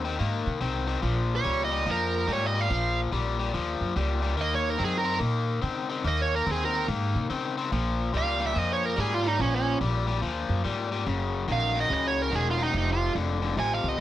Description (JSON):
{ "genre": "electric blues shuffle", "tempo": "144 BPM", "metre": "4/4", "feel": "swing 64% on 8ths", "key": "Bb minor", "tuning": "A4 = 436 Hz", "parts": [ { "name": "overdriven electric guitar", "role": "riff", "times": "0.0-14.0 s", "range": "F2 to C4", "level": "-29 LUFS", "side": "left 6 dB", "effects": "none" }, { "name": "upright bass", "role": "bass", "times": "0.0-14.0 s", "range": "Fb1 to Db3", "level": "-29 LUFS", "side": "equal", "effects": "none" }, { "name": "smooth overdriven lead guitar", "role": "melody", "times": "1.4-14.0 s", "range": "Db4 to Ab5", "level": "-27 LUFS", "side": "right 4 dB", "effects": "none" } ], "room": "light reverb", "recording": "none", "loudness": "-24 LUFS", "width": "side -13 dB against mid", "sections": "0.0-14.0 A section", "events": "none", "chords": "0.0 Eb5; 1.0 Bbm; 4.4 Eb7(no3); 7.7 Bb7(no3); 11.1 Gb7; 12.7 F", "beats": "0.20 0.62 | 1.04 1.46 1.88 2.29 | 2.71 3.13 3.55 3.96 | 4.38 4.80 5.22 5.64 | 6.05 6.47 6.89 7.31 | 7.72 8.14 8.56 8.98 | 9.39 9.81 10.23 10.65 | 11.07 11.48 11.90 12.32 | 12.74 13.15 13.57 13.99" }